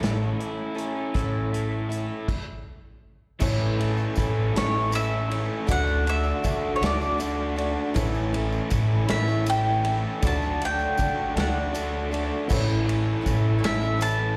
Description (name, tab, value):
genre	folk rock and heartland rock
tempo	53 BPM (dotted quarters)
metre	6/8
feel	straight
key	unclear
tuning	A4 = 437 Hz
part	picked twelve-string acoustic guitar	accompaniment	0.0-14.4 s	A2 to A4	-36 LUFS	equal	slapback echo
part	dark studio string section	sustained chords	0.0-14.4 s	F#3 to A4	-42 LUFS	equal	none
part	crunchy overdriven guitar	riff	0.0-14.4 s	A2 to F#4	-32 LUFS	equal	slapback echo
part	upright bass	bass	0.0-14.4 s	A1 to D3	-29 LUFS	equal	none
part	natural country drum kit	drums	0.0-14.2 s	crash cymbal, hi-hat, kick drum, ride cymbal, snare drum	-33 LUFS	equal	none
part	dark baby grand piano	accompaniment	3.4-14.4 s	F#3 to E5	-40 LUFS	equal	none
part	tambourine	percussion	3.4-14.2 s	none	-46 LUFS	equal	none
part	bowl-back mandolin	melody	4.6-14.4 s	C#5 to A5	-30 LUFS	equal	none
room	light reverb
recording	live gig heard through the venue's PA, recital hall reverb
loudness	-25 LUFS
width	mono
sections	0.0-3.4 A section; 3.4-14.4 B section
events	stop 2.3-3.4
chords	0.0 A; 5.7 D; 8.0 A; 10.2 D; 12.5 A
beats	| 1.13 2.27 | 3.41 4.55 | 5.68 6.82 | 7.96 9.09 | 10.23 11.36 | 12.50 13.64